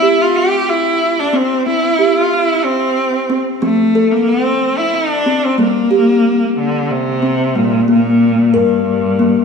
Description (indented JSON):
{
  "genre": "world meditative, meditative tuned percussion",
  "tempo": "61 BPM (dotted quarters)",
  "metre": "6/8",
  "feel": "straight",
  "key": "G dorian",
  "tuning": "A4 = 443 Hz",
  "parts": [
    { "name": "bright cello", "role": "melody", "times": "0.0-9.4 s", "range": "G2 to G4", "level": "-14 LUFS", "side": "equal", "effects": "tape echo" },
    { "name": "kalimba", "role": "arpeggios", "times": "0.0-9.4 s", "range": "F3 to Bb4", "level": "-15 LUFS", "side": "left 1 dB", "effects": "none" }
  ],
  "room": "wet echo chamber reverb, RT60 2.4 s",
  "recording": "none",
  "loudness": "-12 LUFS",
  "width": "side -5 dB against mid",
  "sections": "0.0-7.6 A section; 7.6-9.4 B section",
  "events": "none",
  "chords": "0.0 C5; 3.6 F; 5.6 Gm"
}